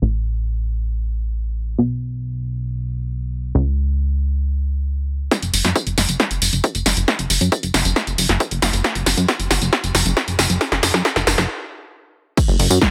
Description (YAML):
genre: uplifting trance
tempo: 136 BPM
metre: 4/4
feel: straight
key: F# minor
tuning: A4 = 440 Hz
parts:
  - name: plucky analog bass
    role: bass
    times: 0.0-12.8 s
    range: F#1 to F#2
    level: -22 LUFS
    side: equal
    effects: sidechain pumping
  - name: electronic kick drum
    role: drums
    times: 5.3-12.9 s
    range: none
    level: -22 LUFS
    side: equal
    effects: overdrive, high-pass filter on kick
  - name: techno drum kit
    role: drums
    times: 5.3-12.9 s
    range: crash cymbal, hi-hat, snare drum, tambourine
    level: -20 LUFS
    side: equal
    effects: overdrive, high-pass filter on snare, sidechain pumping on hats, high-pass filter on hats, sidechain pumping on perc, high-pass filter on perc, sidechain pumping on cymbals, high-pass filter on cymbals
room: light reverb, digital ambience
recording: none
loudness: -20 LUFS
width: mono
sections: 0.0-5.3 A section; 5.3-12.4 B section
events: build-up 5.3-12.4; drum fill 5.3-11.5; stop 11.5-12.4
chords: none